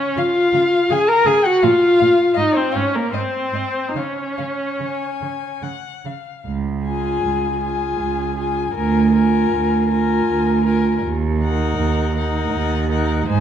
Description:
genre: classical, slow romantic movement for string quartet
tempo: 70-83 BPM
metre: 3/4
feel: rubato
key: Db major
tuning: A4 = 440 Hz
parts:
  - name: muted violin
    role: second line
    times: 0.0-13.4 s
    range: Ab4 to Bb5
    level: -25 LUFS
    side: left 4 dB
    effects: none
  - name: muted viola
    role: accompaniment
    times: 0.0-13.4 s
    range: Bb3 to Bb4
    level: -19 LUFS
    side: equal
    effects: none
  - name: muted violin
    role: melody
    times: 0.2-13.4 s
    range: Eb5 to Ab5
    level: -27 LUFS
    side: left 11 dB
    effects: none
  - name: muted cello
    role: bass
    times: 0.2-13.4 s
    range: Db2 to Db3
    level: -20 LUFS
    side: right 4 dB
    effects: none
room: moderate scoring stage reverb, RT60 1.7 s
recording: none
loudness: -16 LUFS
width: side -9 dB against mid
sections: 0.0-6.5 A section; 6.5-13.4 B section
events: none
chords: 0.0 Db; 1.6 N.C.; 2.4 Abadd9; 3.1 N.C.; 4.0 Db5; 6.5 Db; 8.7 Bb7/D; 11.0 Ebm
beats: 0.17 0.91 | 1.63 2.37 3.13 | 3.96 4.80 5.62 | 6.46 7.25 8.00 | 8.75 9.51 10.26 | 11.02 11.78 12.53 | 13.27

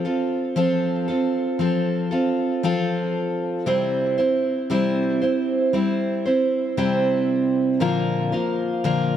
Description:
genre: pop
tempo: 58 BPM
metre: 4/4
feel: straight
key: F major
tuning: A4 = 440 Hz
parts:
  - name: picked steel-string acoustic guitar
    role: solo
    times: 0.0-9.2 s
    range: Bb2 to C5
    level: -20 LUFS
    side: equal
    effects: tape echo
room: moderate lush hall reverb, RT60 2.5 s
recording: none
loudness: -20 LUFS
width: side -10 dB against mid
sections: 0.0-9.2 A section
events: none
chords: 0.0 F; 3.7 C; 7.8 Bb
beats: 0.56 1.59 2.63 | 3.66 4.70 5.73 6.77 | 7.80 8.84

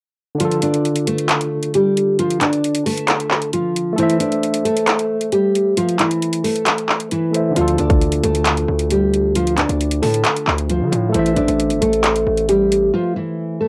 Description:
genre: hip hop, trap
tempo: 134 BPM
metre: 4/4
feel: half-time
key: D minor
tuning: A4 = 440 Hz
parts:
  - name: barky tine electric piano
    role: accompaniment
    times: 0.3-13.7 s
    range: D3 to E5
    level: -25 LUFS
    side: equal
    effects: low-pass filter, cassette tape
  - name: nylon-string guitar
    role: melody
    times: 0.4-13.7 s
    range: E3 to D5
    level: -20 LUFS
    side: equal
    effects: low-pass filter, cassette tape
  - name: trap drum kit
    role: drums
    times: 0.4-12.8 s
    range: handclaps, hi-hat, kick drum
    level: -22 LUFS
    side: equal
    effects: cassette tape
  - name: distorted 808-style bass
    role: bass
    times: 7.6-12.9 s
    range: G1 to D3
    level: -24 LUFS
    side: equal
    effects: distortion
room: moderate studio reverb, RT60 0.5 s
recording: home recording on cassette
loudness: -18 LUFS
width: mono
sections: 0.4-13.7 A section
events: kick muted 0.4-7.6; break 12.9-13.7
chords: 0.4 Dm; 4.0 Am; 7.6 Dm; 11.1 Am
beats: | 0.40 0.85 1.29 1.74 | 2.19 2.64 3.08 3.53 | 3.98 4.43 4.88 5.32 | 5.77 6.22 6.67 7.12 | 7.56 8.01 8.46 8.91 | 9.35 9.80 10.25 10.70 | 11.14 11.59 12.04 12.49 | 12.94 13.38

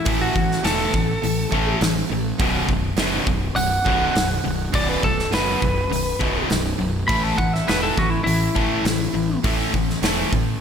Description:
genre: hard rock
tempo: 102 BPM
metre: 4/4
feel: straight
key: unclear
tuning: A4 = 440 Hz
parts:
  - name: lightly driven lead guitar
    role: melody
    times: 0.0-9.4 s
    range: E4 to B5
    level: -24 LUFS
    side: equal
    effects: slapback echo
  - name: cranked stack guitar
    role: riff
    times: 0.0-10.6 s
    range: B1 to A3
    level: -25 LUFS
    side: left 9 dB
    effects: overdrive, slapback echo
  - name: distorted electric guitar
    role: riff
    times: 0.0-10.6 s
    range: B1 to A3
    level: -26 LUFS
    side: right 11 dB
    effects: overdrive
  - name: fuzz fingered electric bass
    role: bass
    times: 0.1-10.5 s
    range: B0 to A1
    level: -27 LUFS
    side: equal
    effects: overdrive
  - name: big rock drum kit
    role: drums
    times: 0.1-10.5 s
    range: hi-hat, kick drum, snare drum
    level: -24 LUFS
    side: equal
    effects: none
room: moderate lush hall reverb, RT60 2.6 s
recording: big arena sound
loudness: -18 LUFS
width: side -7 dB against mid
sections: 0.0-10.6 A section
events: lead electric guitar solo 0.0-10.6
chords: 0.0 A5; 2.4 B5; 7.1 A5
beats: | 0.06 0.64 1.23 1.81 | 2.40 2.99 3.57 4.16 | 4.75 5.33 5.92 6.51 | 7.09 7.68 8.27 8.86 | 9.45 10.03

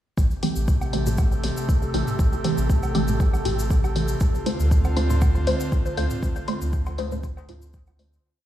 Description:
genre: dub techno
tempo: 119 BPM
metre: 4/4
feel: swing 54% on 16ths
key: A minor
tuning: A4 = 439 Hz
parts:
  - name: airy breathy pad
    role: sustained chords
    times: 0.2-8.2 s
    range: C3 to G4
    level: -30 LUFS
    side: equal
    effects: chorus, sidechain pumping
  - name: warm sub bass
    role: bass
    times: 0.2-8.2 s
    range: A1 to D2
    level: -25 LUFS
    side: equal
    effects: tube saturation, sidechain pumping
  - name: electronic kick drum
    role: drums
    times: 0.2-7.8 s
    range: none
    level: -21 LUFS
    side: equal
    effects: none
  - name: cabasa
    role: percussion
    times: 0.2-8.2 s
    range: none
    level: -40 LUFS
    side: left 4 dB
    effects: none
  - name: wind-like tuned noise texture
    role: texture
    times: 1.1-8.3 s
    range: A4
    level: -35 LUFS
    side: right 2 dB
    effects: built-in reverb, sidechain pumping
  - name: filtered dub chord stab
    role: stabs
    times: 0.4-8.2 s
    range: E3 to C5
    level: -28 LUFS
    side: equal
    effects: phaser, sidechain pumping, dub echo
  - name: electronic hi-hat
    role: drums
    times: 0.4-8.1 s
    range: none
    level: -34 LUFS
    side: left 2 dB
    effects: none
  - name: electronic woodblock and toms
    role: percussion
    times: 0.8-8.0 s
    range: none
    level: -33 LUFS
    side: right 2 dB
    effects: sidechain pumping on perc, sidechain pumping on toms, dub echo
room: light reverb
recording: played on a big sound system in a bare room, stone room reverb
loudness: -20 LUFS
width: side -12 dB against mid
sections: 0.2-8.2 groove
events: filter sweep on synth stab 0.2-8.2; fade-out 5.6-8.2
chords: 0.2 Am7; 4.2 Dm7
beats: | 0.18 0.68 1.18 1.69 | 2.19 2.70 3.20 3.71 | 4.21 4.71 5.22 5.72 | 6.23 6.73 7.24 7.74

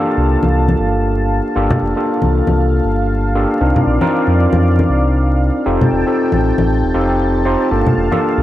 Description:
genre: deep house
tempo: 117 BPM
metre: 4/4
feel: swing 59% on 16ths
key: G minor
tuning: A4 = 443 Hz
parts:
  - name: warm analog pad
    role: sustained chords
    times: 0.0-8.4 s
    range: D5 to A5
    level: -23 LUFS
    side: equal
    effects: chorus
  - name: overdriven tine electric piano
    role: stabs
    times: 0.0-8.4 s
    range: Bb3 to C5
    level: -16 LUFS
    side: equal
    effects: wide subtle chorus, analog delay
  - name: sub bass with octave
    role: bass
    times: 0.2-8.4 s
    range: Eb1 to F2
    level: -16 LUFS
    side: equal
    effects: none
  - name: congas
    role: percussion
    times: 0.4-8.2 s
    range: none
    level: -19 LUFS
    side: left 1 dB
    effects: none
room: light reverb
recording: vinyl crackle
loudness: -12 LUFS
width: side -14 dB against mid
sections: 0.0-8.4 A section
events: none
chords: 0.0 Gm9; 3.6 Cm11; 5.7 F9; 7.7 Gm9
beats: 0.02 0.53 1.04 | 1.56 2.07 2.58 3.10 | 3.61 4.12 4.63 5.15 | 5.66 6.17 6.69 7.20 | 7.71 8.22

